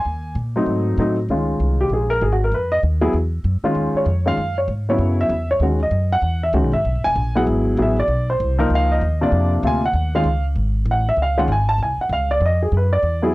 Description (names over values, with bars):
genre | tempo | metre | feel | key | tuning
jazz piano trio | 194 BPM | 4/4 | swing 61% on 8ths | Db major | A4 = 440 Hz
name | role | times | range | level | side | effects
warm baby grand piano | melody | 0.0-13.3 s | C3 to A5 | -19 LUFS | equal | none
upright bass | bass | 0.0-13.3 s | E1 to Bb2 | -20 LUFS | equal | none
room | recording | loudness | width
little or no reverb | dry, gritty hardware recording, transformer saturation, cassette tape | -17 LUFS | side -19 dB against mid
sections
0.0-1.3 A section; 1.3-11.2 B section; 11.2-13.3 B section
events
grand piano solo 1.3-13.3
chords
0.1 Eb5; 0.7 Ab7b9; 1.3 Dbmaj7; 2.5 F7(b5, no3); 3.1 Esus2; 3.8 Ebm11; 5.0 Gb5; 5.6 Ebmadd11; 6.2 Eadd9; 7.5 Ab7alt; 8.7 Db; 9.3 Bb; 9.9 Dbadd9; 10.6 Gbmadd9/Ab; 11.2 Dbmaj7; 12.4 F7(b5, no3)